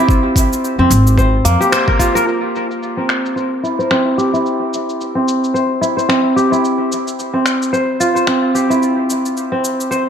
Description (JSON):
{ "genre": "organic downtempo", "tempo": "110 BPM", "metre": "4/4", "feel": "swing 57% on 16ths", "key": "unclear", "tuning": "A4 = 439 Hz", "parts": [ { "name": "kora", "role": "arpeggios", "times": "0.0-10.1 s", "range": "Bb3 to C5", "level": "-14 LUFS", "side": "equal", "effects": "low-pass filter, dub echo" }, { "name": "afro-pop drum kit", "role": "drums", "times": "0.1-10.0 s", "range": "cabasa, finger snaps, hi-hat", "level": "-22 LUFS", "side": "equal", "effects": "low-pass filter on hats, studio reverb, low-pass filter on perc, low-pass filter on snare" }, { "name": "electronic kick drum", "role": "drums", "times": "0.1-2.1 s", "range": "none", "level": "-15 LUFS", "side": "equal", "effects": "overdrive, studio reverb" }, { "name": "upright bass", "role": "bass", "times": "0.8-1.6 s", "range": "Ab1 to F2", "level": "-12 LUFS", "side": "equal", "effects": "none" } ], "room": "wet spring reverb, RT60 1.9 s, small room ambience", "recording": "echo-heavy mix", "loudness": "-13 LUFS", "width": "side -8 dB against mid", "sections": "0.0-2.3 A section; 2.3-10.1 B section", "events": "band accent 1.7; filter sweep on drum 2.3-10.1", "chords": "0.0 Db6 (rootless); 2.3 C; 6.6 G7sus4" }